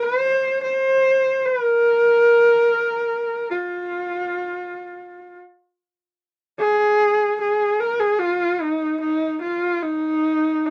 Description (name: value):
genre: mongolian traditional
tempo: 73 BPM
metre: 4/4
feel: straight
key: F yu mode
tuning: A4 = 444 Hz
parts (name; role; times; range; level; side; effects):
- clear horsehead fiddle; solo; 0.0-10.7 s; C4 to C5; -20 LUFS; equal; cassette tape
room: wet booth ambience, RT60 0.2 s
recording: home recording on cassette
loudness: -20 LUFS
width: mono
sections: 0.0-6.6 A section; 6.6-10.7 B section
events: none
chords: none